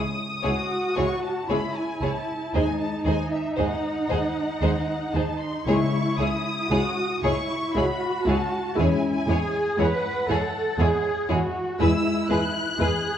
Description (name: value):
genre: classical, slow romantic movement for symphony orchestra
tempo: 58 BPM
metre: 3/4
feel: rubato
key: C# minor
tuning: A4 = 439 Hz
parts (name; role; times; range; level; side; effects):
- warm studio violin section; melody; 0.0-13.2 s; E5 to F#6; -31 LUFS; left 2 dB; none
- timpani; percussion; 0.0-0.9, 5.7-7.2 s; C#3; -31 LUFS; left 2 dB; none
- rich studio violin section; second line; 0.4-12.9 s; G#4 to C#5; -31 LUFS; left 1 dB; none
- warm studio viola section; accompaniment; 0.4-12.9 s; G#3 to E4; -30 LUFS; equal; none
- warm chamber double bass section; bass; 0.4-12.9 s; C#2 to E2; -28 LUFS; right 2 dB; none
- warm studio cello section; bass; 0.4-13.2 s; D#4 to B4; -28 LUFS; right 1 dB; none
- mellow French horn section; sustained chords; 2.5-12.2 s; G#3 to E4; -28 LUFS; left 2 dB; none
room: wet recital hall reverb, RT60 1.6 s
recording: worn, warbling old tape, cassette tape, warbly pitch drift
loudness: -22 LUFS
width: side -9 dB against mid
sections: 0.0-13.2 A section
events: none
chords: 0.0 C#m; 2.5 G#7/D#; 5.7 C#m; 8.8 C#m/E; 11.8 E